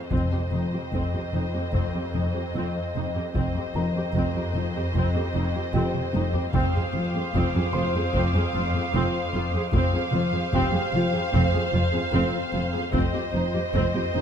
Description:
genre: cinematic, suspense film score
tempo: 75 BPM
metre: 4/4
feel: straight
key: unclear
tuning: A4 = 440 Hz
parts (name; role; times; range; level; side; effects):
- muted symphonic violin section; melody; 0.0-14.2 s; Eb5 to F5; -32 LUFS; right 1 dB; none
- muted symphonic violin section; second line; 0.0-14.2 s; C5; -32 LUFS; equal; none
- swarming drone; drone; 0.0-14.2 s; F2; -32 LUFS; equal; built-in reverb
- muted symphonic viola section; accompaniment; 0.1-14.2 s; C4 to Ab4; -33 LUFS; right 1 dB; none
- smooth gliding synth bass; riff; 0.1-14.2 s; F2 to F3; -29 LUFS; left 3 dB; none
- muted symphonic cello section; bass; 0.1-14.2 s; F2; -30 LUFS; right 2 dB; none
- muted symphonic double bass section; bass; 0.1-14.2 s; F1; -30 LUFS; right 3 dB; none
- taiko ensemble; drums; 0.1-14.2 s; none; -31 LUFS; equal; none
- timpani; percussion; 0.1-1.3 s; F2; -34 LUFS; equal; none
- felt-muted upright piano; texture; 3.8-13.0 s; G4 to C6; -37 LUFS; left 2 dB; none
- muted symphonic violin section; texture; 6.5-12.5 s; C6 to Eb6; -38 LUFS; left 1 dB; none
room: moderate scoring stage reverb, RT60 2.0 s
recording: none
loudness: -22 LUFS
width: side -8 dB against mid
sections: 0.0-14.2 A section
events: drum fill 5.7-6.5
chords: 0.1 Eb6/F; 6.5 Fm; 12.9 Eb6/F

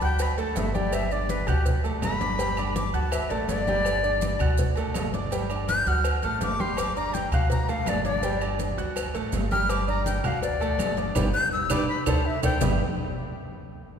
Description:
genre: latin, salsa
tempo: 164 BPM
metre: 4/4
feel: straight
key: G major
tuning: A4 = 440 Hz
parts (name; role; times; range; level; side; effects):
- breathy bright jazz flute; melody; 0.0-12.6 s; G4 to G6; -28 LUFS; left 3 dB; none
- clear baby grand piano; accompaniment; 0.0-12.8 s; G3 to F#6; -31 LUFS; right 3 dB; none
- upright bass; bass; 0.0-12.8 s; G1 to D2; -28 LUFS; equal; none
- congas; percussion; 0.0-12.7 s; none; -32 LUFS; left 2 dB; none
- cowbell and bongos; percussion; 0.0-12.7 s; none; -36 LUFS; left 4 dB; none
- maracas; percussion; 0.0-12.7 s; none; -43 LUFS; right 7 dB; none
- agogo bells and timbales; percussion; 0.2-12.7 s; none; -35 LUFS; right 4 dB; none
- claves; percussion; 0.9-12.7 s; none; -42 LUFS; right 3 dB; none
room: wet church reverb, RT60 3.1 s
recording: recorded in a church or concert hall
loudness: -23 LUFS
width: side -7 dB against mid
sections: 0.0-12.6 A section; 12.6-14.0 B section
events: flute solo 0.0-12.6; band accent 11.2-12.6; drum fill 11.5-12.6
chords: 0.2 D; 0.9 G5; 1.7 D; 2.4 G; 3.1 D; 3.9 G5; 4.6 D; 5.3 G5; 6.0 D; 6.8 G5; 7.5 D; 8.2 G5; 9.0 D; 9.7 G5; 10.4 D; 11.2 G; 11.9 D5; 12.6 G

